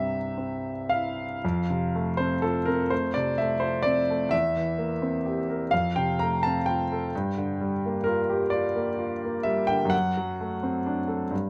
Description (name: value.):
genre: classical, romantic nocturne for solo piano.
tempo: 42 BPM (dotted quarters).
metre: 6/8.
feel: uneven beats, rubato.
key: F major.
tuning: A4 = 441 Hz.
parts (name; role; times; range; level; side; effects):
clear grand piano; solo; 0.0-11.5 s; C2 to Bb5; -27 LUFS; equal; none.
room: light reverb.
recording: close, detailed microphones.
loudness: -27 LUFS.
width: mono.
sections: 0.0-1.4 A section; 1.4-11.5 B section.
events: none.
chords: 0.0 C; 1.4 F; 4.3 C7/E; 5.7 F; 7.1 Gm7; 9.9 D7/F#.